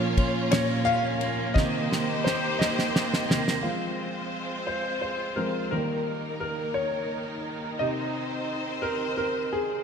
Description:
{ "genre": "six-eight pop ballad", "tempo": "58 BPM (dotted quarters)", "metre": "6/8", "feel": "straight", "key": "unclear", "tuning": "A4 = 440 Hz", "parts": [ { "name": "clear concert grand piano", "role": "accompaniment", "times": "0.0-9.8 s", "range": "Bb2 to F5", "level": "-28 LUFS", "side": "left 1 dB", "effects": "wide subtle chorus" }, { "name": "rich studio string section", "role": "sustained chords", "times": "0.0-9.8 s", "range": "Eb3 to Db5", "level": "-31 LUFS", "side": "equal", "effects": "none" }, { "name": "electric guitar at the edge of break-up", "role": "arpeggios", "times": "0.0-4.2 s", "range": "Eb3 to G4", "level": "-31 LUFS", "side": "right 4 dB", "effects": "ping-pong delay" }, { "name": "damped 70s drum kit", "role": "drums", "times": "0.2-3.6 s", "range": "kick drum, ride cymbal, snare drum", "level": "-28 LUFS", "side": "right 1 dB", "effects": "none" } ], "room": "wet lush hall reverb, RT60 2.7 s", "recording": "bright 1980s-style digital production", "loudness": "-25 LUFS", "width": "side -6 dB against mid", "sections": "0.0-3.6 A section; 3.6-9.8 B section", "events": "grand piano solo 0.0-3.6, 3.6-9.8; drum fill 1.6-3.6", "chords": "0.0 Bbm; 1.6 Cm7; 3.6 Fm; 5.7 Eb; 7.8 Cm", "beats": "0.52 | 1.56 2.60 | 3.64 4.68 | 5.72 6.76 | 7.80 8.84" }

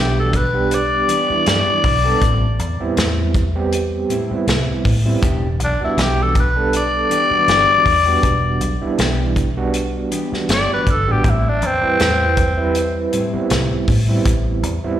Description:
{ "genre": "straight-eighth soul blues", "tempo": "80 BPM", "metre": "4/4", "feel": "swing 55% on 16ths", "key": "E minor", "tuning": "A4 = 440 Hz", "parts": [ { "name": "growling tenor saxophone", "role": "melody", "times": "0.0-13.1 s", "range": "C4 to D5", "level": "-17 LUFS", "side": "left 3 dB", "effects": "slapback echo" }, { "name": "overdriven reed electric piano", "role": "accompaniment", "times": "0.0-15.0 s", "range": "G3 to B4", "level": "-22 LUFS", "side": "right 5 dB", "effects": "tremolo, slapback echo" }, { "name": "mellow electric guitar", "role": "stabs", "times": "0.0-14.3 s", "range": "A2 to G4", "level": "-26 LUFS", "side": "left 3 dB", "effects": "wide subtle chorus, slapback echo" }, { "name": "vintage muted fingered electric bass", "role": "bass", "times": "0.0-14.9 s", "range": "E1 to A2", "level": "-20 LUFS", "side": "equal", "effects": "none" }, { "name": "warm soul drum kit", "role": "drums", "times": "0.3-14.8 s", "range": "hi-hat, kick drum, snare drum", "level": "-20 LUFS", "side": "equal", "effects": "none" } ], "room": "studio reverb", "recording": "live gig heard through the venue's PA, recital hall reverb", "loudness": "-15 LUFS", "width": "side -11 dB against mid", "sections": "0.0-15.0 A section", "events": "none", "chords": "0.0 Em7; 2.2 Am7; 5.2 Em7; 11.2 Am7", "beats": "0.71 1.46 | 2.22 2.97 3.72 4.47 | 5.22 5.98 6.73 7.48 | 8.23 8.98 9.74 10.49 | 11.24 11.99 12.75 13.50 | 14.25" }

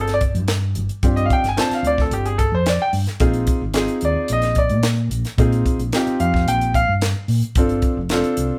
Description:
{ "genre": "electric jazz fusion", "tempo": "110 BPM", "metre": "4/4", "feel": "straight", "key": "G phrygian", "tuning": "A4 = 438 Hz", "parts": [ { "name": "bright concert grand piano", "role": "melody", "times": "0.0-6.9 s", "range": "G4 to A5", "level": "-23 LUFS", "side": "equal", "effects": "none" }, { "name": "warm grand piano", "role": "accompaniment", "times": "0.0-8.6 s", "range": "C4 to C5", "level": "-24 LUFS", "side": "equal", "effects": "none" }, { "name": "hollow-body short-scale fingered electric bass", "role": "bass", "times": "0.0-8.5 s", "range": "F1 to Bb2", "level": "-24 LUFS", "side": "equal", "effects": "none" }, { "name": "tight funk drum kit", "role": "drums", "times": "0.1-8.5 s", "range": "hi-hat, kick drum, snare drum", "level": "-24 LUFS", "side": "equal", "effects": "none" } ], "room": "moderate studio reverb, RT60 0.7 s", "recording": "band playing live in one room", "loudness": "-19 LUFS", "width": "mono", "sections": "0.0-8.6 A section", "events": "grand piano solo 0.0-8.6", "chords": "0.0 G7sus4; 3.2 Bb9sus4; 7.6 G9sus4", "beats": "0.49 | 1.03 1.58 2.12 2.67 | 3.21 3.75 4.30 4.84 | 5.39 5.93 6.47 7.02 | 7.56 8.11" }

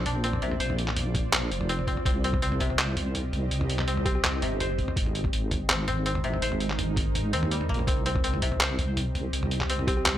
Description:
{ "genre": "half-time drum and bass", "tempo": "165 BPM", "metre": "4/4", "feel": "half-time", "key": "C minor", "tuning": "A4 = 439 Hz", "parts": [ { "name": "bowed-like drone", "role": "sustained chords", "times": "0.0-10.2 s", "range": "Ab3 to Eb5", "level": "-36 LUFS", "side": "right 2 dB", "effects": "built-in reverb, sidechain pumping" }, { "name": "koto", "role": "arpeggios", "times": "0.0-10.2 s", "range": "C3 to C5", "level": "-32 LUFS", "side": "left 3 dB", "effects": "analog delay" }, { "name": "deep soft wobble bass", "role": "bass", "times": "0.0-10.2 s", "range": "F1 to Eb2", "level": "-29 LUFS", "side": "equal", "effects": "chorus" }, { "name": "boom bap sampler-style drum kit", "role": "drums", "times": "0.1-10.1 s", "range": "handclaps, hi-hat, toms", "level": "-29 LUFS", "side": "equal", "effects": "none" }, { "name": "electronic kick drum", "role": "drums", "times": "1.1-9.9 s", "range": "none", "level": "-29 LUFS", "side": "equal", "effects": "none" }, { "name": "thumb-piano-like synth pluck", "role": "melody", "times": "4.1-4.2, 9.9-10.2 s", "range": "G4", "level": "-37 LUFS", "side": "right 1 dB", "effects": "chorus, tape echo" } ], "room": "light reverb", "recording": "dry, gritty hardware recording", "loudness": "-24 LUFS", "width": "side -12 dB against mid", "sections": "0.0-10.2 A section", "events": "none", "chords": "0.0 Bbadd9; 2.1 Cm; 5.0 Ab; 7.9 Cm", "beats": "0.24 | 0.60 0.96 1.33 1.69 | 2.06 2.42 2.78 3.15 | 3.51 3.87 4.24 4.60 | 4.96 5.33 5.69 6.06 | 6.42 6.78 7.15 7.51 | 7.87 8.24 8.60 8.96 | 9.33 9.69 10.06" }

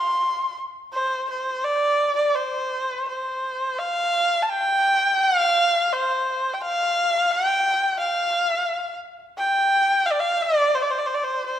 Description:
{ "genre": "chinese traditional", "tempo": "85 BPM", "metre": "4/4", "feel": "rubato", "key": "unclear", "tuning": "A4 = 440 Hz", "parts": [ { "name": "rich erhu", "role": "solo", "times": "0.0-11.6 s", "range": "C5 to C6", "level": "-20 LUFS", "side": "equal", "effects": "none" } ], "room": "wet recital hall reverb, RT60 1.8 s", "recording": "none", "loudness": "-20 LUFS", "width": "side -10 dB against mid", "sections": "0.0-3.8 A section; 3.8-11.6 B section", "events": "none", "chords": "none", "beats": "0.22 | 0.93 1.64 2.35 3.07 | 3.79 4.50 5.20 5.91 | 6.60 7.29 7.98 8.66 | 9.35 10.05 10.74 11.44" }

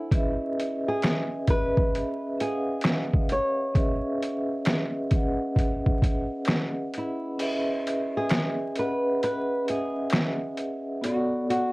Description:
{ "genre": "lo-fi hip hop", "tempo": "66 BPM", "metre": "4/4", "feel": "swing 64% on 16ths", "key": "C# minor", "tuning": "A4 = 437 Hz", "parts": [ { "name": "flamenco guitar", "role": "melody", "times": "0.0-11.7 s", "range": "E4 to C#5", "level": "-30 LUFS", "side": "equal", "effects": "low-pass filter" }, { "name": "vibraphone with soft mallets", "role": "accompaniment", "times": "0.0-11.7 s", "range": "B3 to F#5", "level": "-28 LUFS", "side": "equal", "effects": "cassette tape, low-pass filter" }, { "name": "trip hop sampler-style drum kit", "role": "drums", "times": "0.1-11.7 s", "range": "crash cymbal, finger snaps, hi-hat, kick drum, snare drum", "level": "-25 LUFS", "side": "equal", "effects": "overdrive" } ], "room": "light reverb", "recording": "worn, warbling old tape, cassette tape, vinyl crackle, warbly pitch drift", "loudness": "-24 LUFS", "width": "side -22 dB against mid", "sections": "0.0-7.4 A section; 7.4-11.7 A section", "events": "kick muted 7.4-11.7", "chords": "0.1 C#m9; 11.0 Bm7", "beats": "| 0.12 1.02 1.93 2.84 | 3.75 4.66 5.57 6.48 | 7.39 8.30 9.21 10.12 | 11.03" }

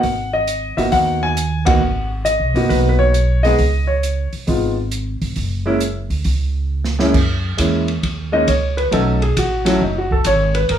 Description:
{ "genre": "jazz piano trio", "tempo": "135 BPM", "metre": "4/4", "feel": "swing 68% on 8ths", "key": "F# mixolydian", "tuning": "A4 = 440 Hz", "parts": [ { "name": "warm concert grand piano", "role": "melody", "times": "0.0-10.8 s", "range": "F#2 to G#5", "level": "-17 LUFS", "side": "equal", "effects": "none" }, { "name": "upright bass", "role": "bass", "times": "0.0-10.8 s", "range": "F#1 to F#2", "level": "-19 LUFS", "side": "equal", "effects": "none" }, { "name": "open jazz drum kit", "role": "drums", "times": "0.0-10.8 s", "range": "crash cymbal, hi-hat, kick drum, ride cymbal, snare drum", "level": "-24 LUFS", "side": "right 2 dB", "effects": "none" } ], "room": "light reverb", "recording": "studio reverb", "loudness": "-15 LUFS", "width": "side -9 dB against mid", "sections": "0.0-7.1 A section; 7.1-10.8 B section", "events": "band accent 1.6; drum fill 6.7-7.1; grand piano solo 7.1-10.8", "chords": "0.0 G#m7; 3.6 C#5; 5.4 N.C.; 6.3 C#5; 7.1 F#7; 8.9 B7", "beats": "| 0.03 0.48 0.92 1.36 | 1.81 2.25 2.70 3.14 | 3.59 4.03 4.48 4.92 | 5.37 5.81 6.25 6.70 | 7.14 7.59 8.03 8.47 | 8.92 9.36 9.81 10.25 | 10.70" }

